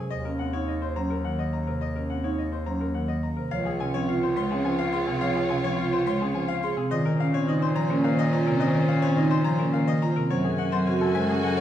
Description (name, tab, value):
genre	classical, minimalist pattern music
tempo	106 BPM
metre	3/4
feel	straight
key	Db major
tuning	A4 = 438 Hz
part	bright baby grand piano	melody	0.0-11.6 s	Ab4 to C6	-32 LUFS	left 6 dB	none
part	marimba with medium mallets	accompaniment	0.0-11.6 s	C3 to C4	-27 LUFS	equal	none
part	vibraphone with medium mallets	arpeggios	0.0-11.6 s	C4 to Db5	-29 LUFS	right 2 dB	none
part	clear bass clarinet	bass	0.1-11.6 s	Db2 to Bb2	-31 LUFS	left 1 dB	none
part	mellow French horn	second line	3.5-11.6 s	Db4 to A4	-34 LUFS	right 3 dB	none
part	warm symphonic string section	sustained chords	3.5-11.6 s	Db4 to Ab5	-34 LUFS	equal	none
room	wet recital hall reverb, RT60 1.4 s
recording	heard from further back in the room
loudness	-23 LUFS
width	side -11 dB against mid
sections	0.0-3.5 A section; 3.5-11.6 A section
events	none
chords	0.1 Ebm7; 3.5 Db; 6.9 Bbmadd9; 10.3 Gbmadd9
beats	| 0.12 0.69 1.25 | 1.82 2.38 2.95 | 3.52 4.08 4.65 | 5.21 5.78 6.34 | 6.91 7.48 8.04 | 8.61 9.18 9.74 | 10.31 10.87 11.44